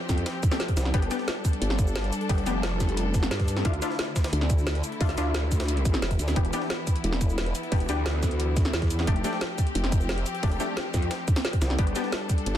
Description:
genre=dark technical drum and bass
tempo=177 BPM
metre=4/4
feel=straight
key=unclear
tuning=A4 = 440 Hz
part: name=rich symphonic string section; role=sustained chords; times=0.0-12.6 s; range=D3 to A4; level=-35 LUFS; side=left 2 dB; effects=sidechain pumping
part: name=growl bass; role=bass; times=0.1-11.9 s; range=E1 to G2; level=-28 LUFS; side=equal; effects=chorus, tube saturation
part: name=breakbeat sampler-style drum kit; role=drums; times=0.1-12.5 s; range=hi-hat, snare drum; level=-40 LUFS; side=equal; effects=none
part: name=drum and bass drum kit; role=drums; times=0.1-12.6 s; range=hi-hat, shaker, snare drum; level=-32 LUFS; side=right 1 dB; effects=none
part: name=electronic kick drum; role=drums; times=0.1-12.4 s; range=none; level=-24 LUFS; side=equal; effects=none
part: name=orchestra-hit-like synth stab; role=stabs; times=0.5-12.1 s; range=A3 to G4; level=-34 LUFS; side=left 3 dB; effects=built-in reverb, tape echo
part: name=formant-sweep wobble bass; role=bass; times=0.8-2.1, 4.3-7.5, 9.8-12.6 s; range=E1 to D2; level=-26 LUFS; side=equal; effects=chorus
room=light reverb, digital ambience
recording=dense, heavily limited modern master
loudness=-24 LUFS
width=side -11 dB against mid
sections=0.0-12.6 A section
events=none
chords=0.0 F6; 0.9 G; 3.6 Dmadd9; 6.4 Em7; 9.1 F6; 11.8 G

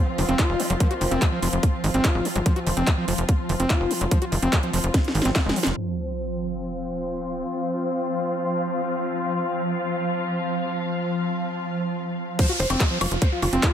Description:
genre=psychedelic trance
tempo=145 BPM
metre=4/4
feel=straight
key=unclear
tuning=A4 = 440 Hz
part: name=vowel-sweep wobble bass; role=second line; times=0.0-1.2 s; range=Bb3 to Eb4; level=-37 LUFS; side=right 1 dB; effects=none
part: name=swarming drone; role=sustained chords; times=0.0-13.7 s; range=F3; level=-30 LUFS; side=right 1 dB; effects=built-in reverb, sidechain pumping
part: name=muted studio string section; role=texture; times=0.0-12.4 s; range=C4 to F5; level=-29 LUFS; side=left 2 dB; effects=sidechain pumping
part: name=screaming distorted acid line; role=riff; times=0.2-5.6, 12.4-13.7 s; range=Eb3 to Gb4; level=-27 LUFS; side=equal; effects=distortion, chorus, auto-pan, sidechain pumping, digital delay
part: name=tight sequencer bass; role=bass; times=0.2-5.7, 12.6-13.6 s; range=F1 to Ab1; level=-25 LUFS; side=equal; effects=none
part: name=drum and bass drum kit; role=drums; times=0.2-5.7, 12.4-13.7 s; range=crash cymbal, handclaps, hi-hat, snare drum, woodblock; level=-27 LUFS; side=equal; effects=overdrive, studio reverb
part: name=electronic kick drum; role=drums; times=0.4-5.4, 12.4-13.7 s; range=none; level=-21 LUFS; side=equal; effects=overdrive, studio reverb
part: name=sub drop and downlifter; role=sound effects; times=5.8-7.4, 12.4-13.7 s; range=none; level=-31 LUFS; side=equal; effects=none
part: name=wide unison lead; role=melody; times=12.4-13.6 s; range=F4 to C5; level=-29 LUFS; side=equal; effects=phaser, sidechain pumping, ping-pong delay
room=light reverb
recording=low-pass filter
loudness=-21 LUFS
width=side -9 dB against mid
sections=0.0-5.8 A section; 5.8-12.4 B section; 12.4-13.7 C section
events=drum fill 4.9-5.8; impact 5.8-7.4; filter sweep 5.8-12.4; drop 12.4-13.7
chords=0.0 F5

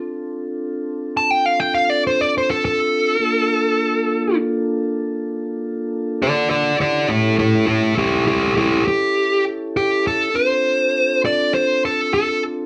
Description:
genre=blues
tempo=67 BPM (dotted quarters)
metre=12/8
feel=straight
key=D minor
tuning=A4 = 440 Hz
part: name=mellow tonewheel organ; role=sustained chords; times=0.0-12.7 s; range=Bb3 to A4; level=-26 LUFS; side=equal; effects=slow rotary speaker
part: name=dark smooth lead guitar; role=melody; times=1.2-12.4 s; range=E4 to A5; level=-19 LUFS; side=equal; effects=overdrive
room=wet studio reverb, RT60 0.5 s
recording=band playing live in one room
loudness=-19 LUFS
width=mono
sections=0.0-12.7 A section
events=lead electric guitar solo 0.0-12.7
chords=0.0 Dm7; 3.2 Bbmaj7; 6.8 A7; 10.3 Dm7

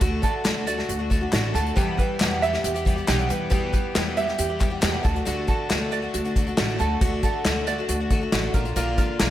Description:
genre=indie folk with a building arrangement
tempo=137 BPM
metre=4/4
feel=straight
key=D major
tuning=A4 = 439 Hz
part: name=picked twelve-string acoustic guitar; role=accompaniment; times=0.0-9.3 s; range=E2 to G4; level=-28 LUFS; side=left 3 dB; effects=slapback echo
part: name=ukulele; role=arpeggios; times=0.0-9.3 s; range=F4 to E5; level=-28 LUFS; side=right 6 dB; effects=none
part: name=upright bass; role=bass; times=0.0-9.3 s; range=A1 to E2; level=-28 LUFS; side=equal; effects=none
part: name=unplugged drum kit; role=drums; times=0.0-9.3 s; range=hi-hat, kick drum, snare drum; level=-24 LUFS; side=equal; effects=none
part: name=group handclap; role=percussion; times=0.5-9.3 s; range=none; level=-34 LUFS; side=left 4 dB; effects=none
room=moderate lush hall reverb, RT60 1.8 s, small room reverb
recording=big arena sound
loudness=-21 LUFS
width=side -12 dB against mid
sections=0.0-9.3 A section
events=none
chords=0.0 D; 1.8 Em; 5.0 D; 8.5 Bb

